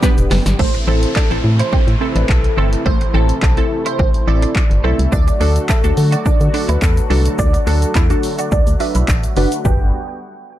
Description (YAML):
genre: dance-pop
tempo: 106 BPM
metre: 4/4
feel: straight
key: unclear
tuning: A4 = 442 Hz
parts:
  - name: wavetable chord stab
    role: accompaniment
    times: 0.0-9.9 s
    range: B3 to B4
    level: -22 LUFS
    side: right 2 dB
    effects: sidechain pumping, low-pass filter
  - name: filtered supersaw swell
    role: sustained chords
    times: 0.0-9.9 s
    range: C3 to G4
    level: -26 LUFS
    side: equal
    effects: sidechain pumping, low-pass filter
  - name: punchy analog drum machine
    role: drums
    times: 0.0-9.8 s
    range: crash cymbal, handclaps, hi-hat, kick drum, shaker, snare drum, toms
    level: -16 LUFS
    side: equal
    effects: none
  - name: tube shaker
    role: percussion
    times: 0.0-0.6, 5.1-9.9 s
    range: none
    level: -38 LUFS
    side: left 12 dB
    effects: none
  - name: organ-like FM bass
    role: bass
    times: 0.2-9.9 s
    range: E1 to D3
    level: -16 LUFS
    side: equal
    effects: sidechain pumping
  - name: twelve-string electric guitar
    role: riff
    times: 0.3-9.8 s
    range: A3 to F#4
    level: -26 LUFS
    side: right 4 dB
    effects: ensemble chorus, low-pass filter
  - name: glassy wavetable pluck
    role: melody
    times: 0.6-9.9 s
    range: A4 to G5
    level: -23 LUFS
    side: equal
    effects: chorus, low-pass filter, digital delay
  - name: downlifter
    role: sound effects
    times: 0.6-5.1 s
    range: none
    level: -30 LUFS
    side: equal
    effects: none
room: little or no reverb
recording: dark, warm production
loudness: -13 LUFS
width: side -13 dB against mid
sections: 0.6-9.7 A section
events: drum fill 0.0-0.6; filter sweep 0.6-9.7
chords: 0.0 G; 0.6 Am; 5.1 D; 9.7 Gmaj7